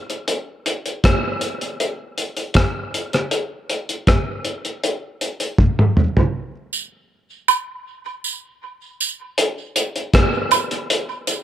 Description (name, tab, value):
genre	reggae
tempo	79 BPM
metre	4/4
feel	straight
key	none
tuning	none
part	cloth-damped thuddy drum kit	drums	0.1-11.4 s	hi-hat, kick drum, rim click, toms	-18 LUFS	equal	none
part	tambourine and woodblock	percussion	6.7-11.4 s	none	-20 LUFS	right 7 dB	high-pass filter on perc, dub echo
room	moderate spring reverb, RT60 2.4 s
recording	none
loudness	-18 LUFS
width	side -11 dB against mid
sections	0.0-6.3 A section; 6.3-11.4 B section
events	drum fill 5.6-6.3; break 6.3-9.4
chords	none